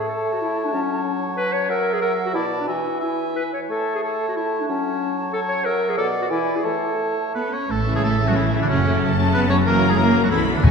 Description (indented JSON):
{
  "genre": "classical, dramatic, fast romantic movement for symphony orchestra",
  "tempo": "183 BPM",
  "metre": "3/4",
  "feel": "rubato",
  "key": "A major",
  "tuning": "A4 = 440 Hz",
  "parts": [
    { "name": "bright clarinet", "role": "second line", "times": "0.0-7.5 s", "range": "C#4 to C#5", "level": "-24 LUFS", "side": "left 1 dB", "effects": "none" },
    { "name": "bright oboe", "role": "second line", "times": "0.0-10.7 s", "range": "C#4 to E5", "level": "-27 LUFS", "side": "equal", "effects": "none" },
    { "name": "mellow hollow silver concert flute", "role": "second line", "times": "0.0-7.5 s", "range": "F#5 to A5", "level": "-29 LUFS", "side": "left 2 dB", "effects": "none" },
    { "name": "mellow bassoon", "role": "accompaniment", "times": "0.0-7.5 s", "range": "B2 to A3", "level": "-27 LUFS", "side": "right 1 dB", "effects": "none" },
    { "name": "rich symphonic cello section", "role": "bass", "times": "7.3-10.7 s", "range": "C#3 to C#4", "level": "-24 LUFS", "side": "right 2 dB", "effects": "none" },
    { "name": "warm symphonic violin section", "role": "melody", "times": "7.7-10.7 s", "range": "E5 to B5", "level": "-27 LUFS", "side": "left 4 dB", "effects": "none" },
    { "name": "rich symphonic double bass section", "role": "bass", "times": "7.7-10.7 s", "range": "F#1 to E2", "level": "-22 LUFS", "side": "right 1 dB", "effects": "none" },
    { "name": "rich symphonic violin section", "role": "second line", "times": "7.9-10.7 s", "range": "G#3 to C#4", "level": "-25 LUFS", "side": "left 3 dB", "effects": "none" },
    { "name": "rich symphonic viola section", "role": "accompaniment", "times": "7.9-10.7 s", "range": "C#3 to F#3", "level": "-23 LUFS", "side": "right 2 dB", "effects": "none" },
    { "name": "timpani", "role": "percussion", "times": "10.6-10.7 s", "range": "E2", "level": "-10 LUFS", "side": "left 1 dB", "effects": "none" }
  ],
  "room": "wet concert hall reverb, RT60 2.0 s",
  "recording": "heard from further back in the room",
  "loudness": "-19 LUFS",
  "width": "side -5 dB against mid",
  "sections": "0.0-7.7 A section; 7.7-10.7 A section",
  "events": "none",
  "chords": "0.0 A; 0.7 F#m; 2.3 Bm7; 2.7 E; 3.7 A; 4.7 F#m; 6.0 Bm7; 6.3 E7; 6.6 A; 8.7 F#m; 9.7 F#7; 10.3 Bm7"
}